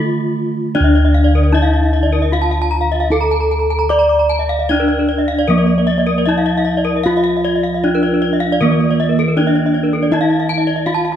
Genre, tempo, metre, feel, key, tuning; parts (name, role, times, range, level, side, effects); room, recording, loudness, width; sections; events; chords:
Balinese gamelan; 76 BPM; 4/4; straight; D pelog; A4 = 441 Hz
gamelan-type bronze metallophone; melody; 0.0-11.2 s; Bb3 to D5; -18 LUFS; equal
gamelan-type bronze metallophone; accompaniment; 0.0-0.7, 7.1-11.2 s; Eb3+35c to Bb3; -22 LUFS; right 6 dB
gamelan-type bossed gongs; bass; 0.0-10.9 s; D2 to D5; -16 LUFS; left 1 dB
gamelan-type bronze metallophone; arpeggios; 0.7-11.1 s; A4 to D6; -21 LUFS; left 4 dB
gamelan-type bronze metallophone; arpeggios; 0.8-11.2 s; Bb4 to Bb5; -22 LUFS; right 5 dB
light reverb; close, detailed microphones; -12 LUFS; side -10 dB against mid
0.7-11.2 A section
break 0.0-0.7